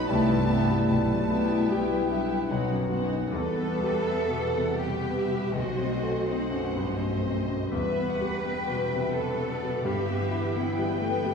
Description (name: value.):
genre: classical, romantic movement for piano and orchestra.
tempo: 72-87 BPM.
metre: 3/4.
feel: rubato.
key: E minor.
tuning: A4 = 443 Hz.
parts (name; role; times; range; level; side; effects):
clear concert grand piano; melody; 0.0-11.3 s; B1 to G5; -28 LUFS; left 2 dB; none.
rich symphonic violin section; melody; 0.0-11.3 s; D#5 to A5; -42 LUFS; left 3 dB; none.
flute section; second line; 0.0-2.5 s; G5 to A5; -37 LUFS; equal; none.
mellow clarinet; second line; 0.0-3.3 s; D4 to F#4; -36 LUFS; left 2 dB; none.
warm cor anglais; second line; 0.0-2.9 s; B4; -38 LUFS; equal; none.
warm symphonic violin section; second line; 0.0-11.3 s; F#4 to G5; -38 LUFS; left 2 dB; none.
mellow bassoon; accompaniment; 0.0-2.9 s; F#3 to G3; -36 LUFS; right 2 dB; none.
rich symphonic viola section; accompaniment; 0.0-11.3 s; E3 to C5; -35 LUFS; right 1 dB; none.
warm French horn section; sustained chords; 0.0-2.9 s; B3 to E4; -34 LUFS; left 4 dB; none.
rich studio cello section; bass; 0.0-11.3 s; G3 to B4; -30 LUFS; right 1 dB; none.
rich studio double bass section; bass; 0.1-11.3 s; E1 to E2; -36 LUFS; right 2 dB; none.
timpani; percussion; 5.5-8.8 s; E2 to B2; -42 LUFS; right 1 dB; none.
room: wet scoring stage reverb, RT60 1.6 s.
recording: heard from further back in the room, small room ambience.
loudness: -24 LUFS.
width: side -6 dB against mid.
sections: 0.0-3.3 A section; 3.3-11.3 B section.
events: none.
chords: 0.1 Cmaj7; 0.9 Em/B; 2.5 B; 3.3 Em; 5.5 B7b9; 7.7 Em; 9.8 Em/G.